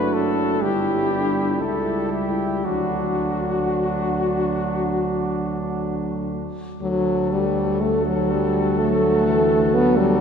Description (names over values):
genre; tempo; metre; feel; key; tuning
classical, brass quintet; 56-64 BPM; 4/4; rubato; D major; A4 = 440 Hz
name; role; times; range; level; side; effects
warm trumpet; melody; 0.0-10.2 s; F#4 to B4; -27 LUFS; left 4 dB; none
warm flugelhorn; second line; 0.0-10.2 s; D4 to F#4; -28 LUFS; right 6 dB; none
warm French horn; accompaniment; 0.0-10.2 s; F#3 to F#4; -23 LUFS; left 1 dB; none
warm trombone; accompaniment; 0.0-10.2 s; E3 to A3; -27 LUFS; right 2 dB; none
mellow tuba; bass; 0.0-10.2 s; F#1 to D2; -26 LUFS; equal; none
room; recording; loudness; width
wet cathedral reverb, RT60 6.0 s; heard from further back in the room; -19 LUFS; side -7 dB against mid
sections
0.0-6.8 A section; 6.8-10.2 A section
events
none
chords
0.0 D/F#; 0.6 Em7/G; 1.6 A7/C#; 2.6 D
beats
0.62 1.61 | 2.65 3.70 4.75 5.79 | 6.82 7.81 8.79 9.74